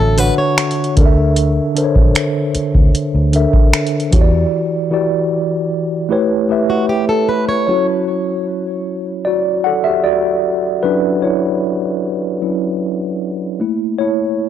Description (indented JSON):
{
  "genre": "contemporary R&B",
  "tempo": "76 BPM",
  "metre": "4/4",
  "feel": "straight",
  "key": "D major",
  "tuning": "A4 = 439 Hz",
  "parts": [
    { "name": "mellow tine electric piano", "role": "accompaniment", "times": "0.0-14.5 s", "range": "D3 to F#5", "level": "-15 LUFS", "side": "equal", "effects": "medium stereo tremolo" },
    { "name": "fingerpicked plugged-in swing-style acoustic guitar", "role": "arpeggios", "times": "0.0-0.9, 6.7-7.9 s", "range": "F#4 to C#5", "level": "-19 LUFS", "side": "equal", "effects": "analog delay" },
    { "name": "vintage muted fingered electric bass", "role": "bass", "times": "0.0-4.4 s", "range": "A1 to E2", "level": "-16 LUFS", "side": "equal", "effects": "none" },
    { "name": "booming analog drum machine", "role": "drums", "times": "0.2-4.3 s", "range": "finger snaps, hi-hat, kick drum", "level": "-13 LUFS", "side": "equal", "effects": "vintage 12-bit sampler grit" }
  ],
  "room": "digital ambience",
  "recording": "dry, gritty hardware recording",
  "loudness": "-13 LUFS",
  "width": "side -10 dB against mid",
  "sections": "0.0-7.7 A section; 7.7-14.5 B section",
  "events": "break 4.5-7.7; tine electric piano solo 7.7-14.5",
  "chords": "0.0 Dmaj7; 1.0 Bbmaj9#11; 4.1 Em7; 6.1 A9; 7.7 Dmaj7; 13.6 Gm6 (rootless)"
}